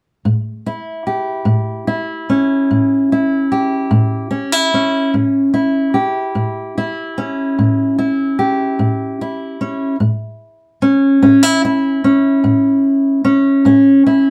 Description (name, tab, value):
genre	blues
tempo	49 BPM (dotted quarters)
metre	12/8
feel	straight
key	A mixolydian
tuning	A4 = 436 Hz
part	fingerpicked steel-string acoustic guitar	solo	0.3-14.3 s	A2 to G4	-15 LUFS	equal	none
room	wet studio reverb, RT60 0.5 s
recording	band playing live in one room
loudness	-15 LUFS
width	mono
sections	0.3-10.0 A section; 10.0-14.3 B section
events	none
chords	0.3 A7; 10.0 A